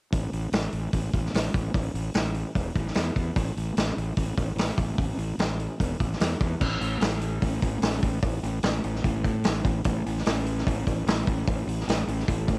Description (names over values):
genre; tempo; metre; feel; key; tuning
garage rock duo or trio; 148 BPM; 4/4; straight; unclear; A4 = 440 Hz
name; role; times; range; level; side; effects
fuzz fingered electric bass; bass; 0.1-12.6 s; E1 to A2; -28 LUFS; equal; overdrive
vintage drum kit; drums; 0.1-12.6 s; crash cymbal, hi-hat, kick drum, snare drum; -26 LUFS; equal; cassette tape
room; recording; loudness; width
light reverb; home recording on cassette; -24 LUFS; side -34 dB against mid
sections
0.1-6.6 A section; 6.6-12.6 B section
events
none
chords
none